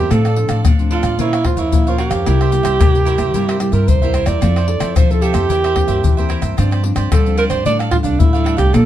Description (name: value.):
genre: samba and choro.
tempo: 111 BPM.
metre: 4/4.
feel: straight.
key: F major.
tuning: A4 = 440 Hz.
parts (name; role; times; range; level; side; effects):
breathy alto saxophone; melody; 0.0-8.9 s; D4 to D5; -18 LUFS; right 4 dB; none.
cavaquinho; accompaniment; 0.0-8.9 s; D4 to Bb5; -26 LUFS; right 6 dB; none.
nylon-string guitar; accompaniment; 0.0-8.9 s; G2 to C5; -23 LUFS; left 2 dB; none.
upright bass; bass; 0.0-8.9 s; C2 to A3; -18 LUFS; equal; none.
tube shaker, surdo, pandeiro and tamborim; percussion; 0.1-8.9 s; none; -16 LUFS; left 3 dB; none.
room: light reverb.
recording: dark, warm production.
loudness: -13 LUFS.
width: side -12 dB against mid.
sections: 0.0-8.9 A section.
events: none.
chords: 0.1 F6/A; 1.2 Bbmadd9; 2.3 C7; 4.4 Fmaj7; 5.5 C7/E; 6.6 G7sus4; 7.7 F69.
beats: | 0.11 0.65 1.19 1.73 | 2.27 2.80 3.34 3.88 | 4.42 4.96 5.50 6.04 | 6.58 7.12 7.66 8.20 | 8.74.